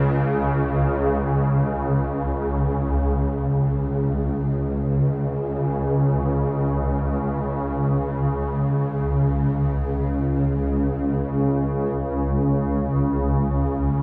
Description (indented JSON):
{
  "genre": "ambient",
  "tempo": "free time",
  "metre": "none",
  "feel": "none",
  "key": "unclear",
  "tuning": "A4 = 440 Hz",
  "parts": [
    { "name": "swarming drone", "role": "solo", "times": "0.0-14.0 s", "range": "C#2 to C#3", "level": "-22 LUFS", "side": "equal", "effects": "built-in reverb, diffuse ambient delay" }
  ],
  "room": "wet huge ambient reverb, RT60 8.1 s",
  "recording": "dark, warm production",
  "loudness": "-23 LUFS",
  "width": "mono",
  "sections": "0.0-3.1 A section; 3.1-14.0 B section",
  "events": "none",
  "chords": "none"
}